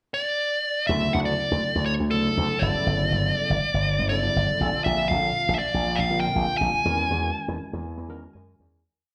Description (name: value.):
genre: electric jazz fusion.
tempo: 120 BPM.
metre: 4/4.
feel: straight.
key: unclear.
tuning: A4 = 440 Hz.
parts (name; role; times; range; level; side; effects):
dark smooth lead guitar; melody; 0.1-8.3 s; A4 to G#5; -27 LUFS; equal; overdrive, slapback echo, analog delay.
barky tine electric piano; accompaniment; 0.9-8.8 s; C#3 to G#5; -34 LUFS; equal; analog chorus, slapback echo.
slap bass with an envelope filter; bass; 0.9-8.8 s; G1 to F#2; -27 LUFS; equal; none.
room: digital ambience.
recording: live gig heard through the venue's PA, club reverb.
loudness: -24 LUFS.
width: mono.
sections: 0.0-0.9 pickup bar; 0.9-8.8 A section.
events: fade-out 6.9-8.8; tine electric piano fill 8.1-8.8.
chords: 0.0 N.C.; 0.9 Dmaj9; 2.6 Gmaj9; 4.6 Bbmaj9; 6.9 Emaj9.